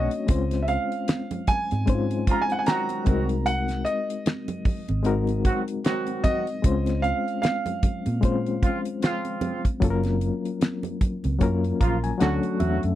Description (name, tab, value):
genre	lush 1970s-style soul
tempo	76 BPM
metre	4/4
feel	swing 58% on 16ths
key	Db major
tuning	A4 = 440 Hz
part	warm grand piano	melody	0.0-12.2 s	Eb5 to Bb5	-28 LUFS	right 2 dB	none
part	reed electric piano	accompaniment	0.0-13.0 s	Gb3 to Bb5	-27 LUFS	left 4 dB	fast tremolo, tube saturation
part	warm horn section	stabs	0.0-12.8 s	Db3 to Gb4	-29 LUFS	right 5 dB	none
part	vintage muted fingered electric bass	bass	0.0-13.0 s	Gb1 to Bb2	-26 LUFS	equal	none
part	damped 70s drum kit	drums	0.1-13.0 s	hi-hat, kick drum, snare drum	-23 LUFS	equal	none
part	congas	percussion	0.3-12.8 s	none	-34 LUFS	right 5 dB	none
room	little or no reverb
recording	dry, close 1970s-style studio recording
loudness	-22 LUFS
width	side -13 dB against mid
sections	0.0-13.0 A section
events	reed electric piano fill 11.4-13.0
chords	0.3 Dbmaj7; 3.1 Ab9; 6.6 Dbmaj7; 9.8 Gbmaj7; 12.2 Dmaj7